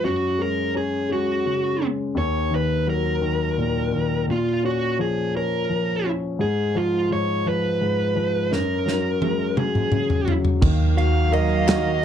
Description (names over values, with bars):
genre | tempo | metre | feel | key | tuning
six-eight pop ballad | 57 BPM (dotted quarters) | 6/8 | straight | Eb minor | A4 = 440 Hz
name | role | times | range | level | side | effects
bluesy overdriven lead guitar | melody | 0.0-12.0 s | F4 to F5 | -24 LUFS | right 2 dB | distortion
warm concert grand piano | accompaniment | 0.0-12.0 s | Eb2 to Bb4 | -24 LUFS | left 3 dB | none
modern studio drum kit | drums | 8.5-11.8 s | crash cymbal, kick drum, ride cymbal, snare drum, toms | -23 LUFS | equal | none
warm studio string section | sustained chords | 10.6-12.0 s | Eb3 to F5 | -26 LUFS | right 4 dB | none
vintage muted fingered electric bass | bass | 10.6-12.0 s | Eb2 | -20 LUFS | right 2 dB | none
room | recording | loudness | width
little or no reverb | none | -20 LUFS | side -9 dB against mid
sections
0.0-10.6 A section; 10.6-12.0 B section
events
drum fill 8.5-10.6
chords
0.0 Gbsus2; 2.2 Ebm; 4.3 Bbm; 6.4 Abm6; 8.5 Gbsus2; 10.6 Ebmadd9